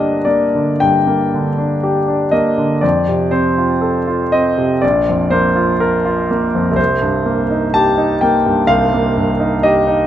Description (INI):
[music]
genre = classical, romantic character piece for solo piano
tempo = 52-64 BPM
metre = 4/4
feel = rubato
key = G minor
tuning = A4 = 440 Hz
[part]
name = clear concert grand piano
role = solo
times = 0.0-10.1 s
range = Bb1 to A5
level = -12 LUFS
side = equal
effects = none
[sound]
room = moderate recital hall reverb, RT60 1.5 s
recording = close, detailed microphones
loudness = -13 LUFS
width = side -11 dB against mid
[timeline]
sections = 0.0-10.1 A section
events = none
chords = 0.0 Gm; 2.8 F; 4.8 Bb5; 6.8 Cm7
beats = 0.83 1.84 | 2.83 3.82 4.83 5.82 | 6.78 7.75 8.70 9.64